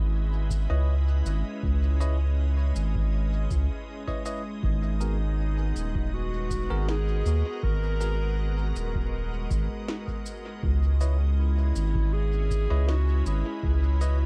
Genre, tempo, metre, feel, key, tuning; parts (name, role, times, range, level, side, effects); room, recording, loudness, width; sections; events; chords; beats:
ambient dub; 80 BPM; 4/4; straight; A4 = 441 Hz
soft additive organ-like pad; sustained chords; 0.0-14.3 s; G#3 to D#5; -40 LUFS; equal; ensemble chorus, built-in reverb
round analog bass; bass; 0.0-14.3 s; D#1 to D#2; -27 LUFS; equal
electronic kick drum; drums; 0.5-13.8 s; -35 LUFS; equal; overdrive
electronic shaker and snare drum; drums; 0.5-14.2 s; -42 LUFS; equal; dub echo
bell-like tine electric piano; stabs; 0.7-14.2 s; B3 to D#5; -42 LUFS; equal; dub echo
warm clarinet; melody; 4.6-14.3 s; D#4 to A#4; -38 LUFS; equal; dub echo
little or no reverb; echo-heavy mix, vinyl crackle; -27 LUFS; mono
0.0-14.3 A section
0.0 C#m9; 4.6 G#m9; 10.6 C#m9
0.13 0.88 | 1.63 2.38 3.13 3.88 | 4.63 5.38 6.13 6.88 | 7.63 8.38 9.13 9.88 | 10.63 11.38 12.13 12.88 | 13.63